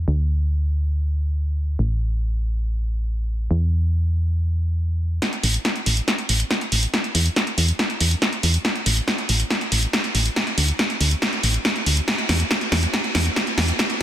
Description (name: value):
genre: uplifting trance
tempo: 140 BPM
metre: 4/4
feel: straight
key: unclear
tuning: A4 = 441 Hz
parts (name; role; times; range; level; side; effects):
- solid FM bass; bass; 0.0-13.7 s; A1 to E2; -20 LUFS; equal; none
- punchy analog drum machine; drums; 5.2-14.0 s; hi-hat, snare drum; -20 LUFS; equal; none
room: light reverb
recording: dense, heavily limited modern master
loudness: -19 LUFS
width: side -12 dB against mid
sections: 0.0-5.2 A section; 5.2-14.0 B section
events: build-up 5.2-14.0; drum fill 5.2-14.0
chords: none